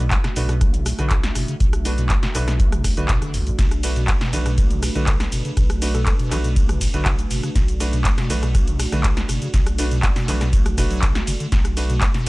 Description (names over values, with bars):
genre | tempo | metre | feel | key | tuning
acid house | 121 BPM | 4/4 | straight | B minor | A4 = 440 Hz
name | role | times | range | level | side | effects
dark analog pad | sustained chords | 0.0-12.3 s | A3 to E5 | -31 LUFS | right 2 dB | chorus, sidechain pumping
acid bass, square | riff | 0.0-12.3 s | B1 to D4 | -26 LUFS | equal | lush chorus, sidechain pumping
saturated sub bass | bass | 0.0-12.3 s | F#1 to B1 | -24 LUFS | equal | tube saturation, sidechain pumping
electro analog drum machine | drums | 0.1-12.3 s | handclaps, hi-hat, ride cymbal, rim click, shaker, snare drum | -26 LUFS | equal | studio reverb
electronic kick drum | drums | 0.1-12.1 s | none | -20 LUFS | equal | studio reverb
bright concert grand piano | stabs | 0.4-12.3 s | A3 to B4 | -30 LUFS | right 2 dB | analog delay
soft struck synth lead | melody | 5.0-6.1 s | A4 | -36 LUFS | left 1 dB | chorus, tape echo
room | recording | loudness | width
digital ambience | dry, gritty hardware recording | -17 LUFS | side -21 dB against mid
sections
0.0-12.3 A section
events
none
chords
0.0 Bm7